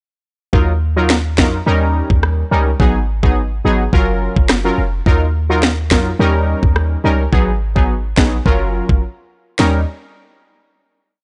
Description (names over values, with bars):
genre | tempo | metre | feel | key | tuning
dancehall | 106 BPM | 4/4 | straight | Eb minor | A4 = 440 Hz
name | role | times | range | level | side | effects
synth brass stab | accompaniment | 0.5-9.8 s | Gb3 to Bb4 | -20 LUFS | equal | chorus
clean 808-style bass | bass | 0.5-9.9 s | F1 to F2 | -20 LUFS | equal | none
island pop drum kit | drums | 0.5-9.7 s | kick drum, rim click, snare drum | -16 LUFS | equal | none
room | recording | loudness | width
little or no reverb | dry, gritty hardware recording, cassette tape, nothing above 10.6 kHz | -15 LUFS | mono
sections
0.5-9.6 verse; 9.6-11.2 final chord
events
break 9.0-9.6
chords
0.5 Ebmadd9; 1.7 Eb7; 2.8 Abm7; 3.9 Gbmaj7; 5.1 Ebmadd9; 6.2 Eb7; 7.3 Abm7; 8.5 Gbmaj7; 9.6 Eb7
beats
| 0.53 1.10 1.67 2.23 | 2.80 3.37 3.93 4.50 | 5.06 5.63 6.20 6.76 | 7.33 7.89 8.46 9.03 | 9.59